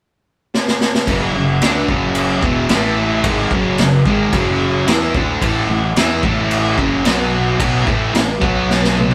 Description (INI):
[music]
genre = garage rock duo or trio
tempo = 110 BPM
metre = 4/4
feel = straight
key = F# minor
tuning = A4 = 439 Hz
[part]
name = raw garage drum kit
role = drums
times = 0.5-9.1 s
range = crash cymbal, kick drum, snare drum, toms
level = -20 LUFS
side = equal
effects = none
[part]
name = thick fuzz guitar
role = riff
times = 1.1-9.1 s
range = E2 to E4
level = -18 LUFS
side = equal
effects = distortion
[part]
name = fuzz fingered electric bass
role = bass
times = 1.1-9.1 s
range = E1 to E2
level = -27 LUFS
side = equal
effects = overdrive, tube saturation
[sound]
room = moderate stone room reverb, RT60 1.3 s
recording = band playing live in one room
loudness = -16 LUFS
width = mono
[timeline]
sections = 0.0-1.1 A section; 1.1-9.1 B section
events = drum fill 0.5-1.1, 8.7-9.1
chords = 0.0 N.C.; 1.1 F#m; 2.7 A5; 3.2 F#5; 5.4 A5; 7.0 B5; 7.6 A5; 8.4 B5